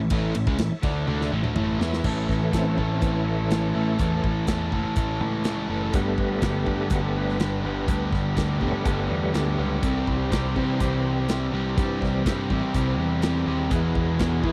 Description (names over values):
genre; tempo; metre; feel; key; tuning
classic rock; 124 BPM; 4/4; straight; unclear; A4 = 438 Hz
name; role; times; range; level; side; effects
bright tonewheel organ; sustained chords; 0.0-14.5 s; E3 to A5; -33 LUFS; equal; overdrive, chorus vibrato, fast rotary speaker
biting overdriven guitar; riff; 0.0-14.5 s; E2 to A4; -33 LUFS; equal; none
overdriven semi-hollow guitar; riff; 0.0-14.5 s; E2 to E4; -30 LUFS; equal; none
growling picked electric bass; bass; 0.0-14.5 s; E1 to E3; -30 LUFS; equal; overdrive
big rock drum kit; drums; 0.1-14.5 s; crash cymbal, hi-hat, kick drum, ride cymbal, snare drum, toms; -30 LUFS; equal; none
room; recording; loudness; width
little or no reverb; dry, close 1970s-style studio recording; -24 LUFS; mono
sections
0.0-2.0 A section; 2.0-14.5 B section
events
drum fill 1.1-2.0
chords
0.0 A; 5.9 Gadd9; 9.8 C; 13.7 E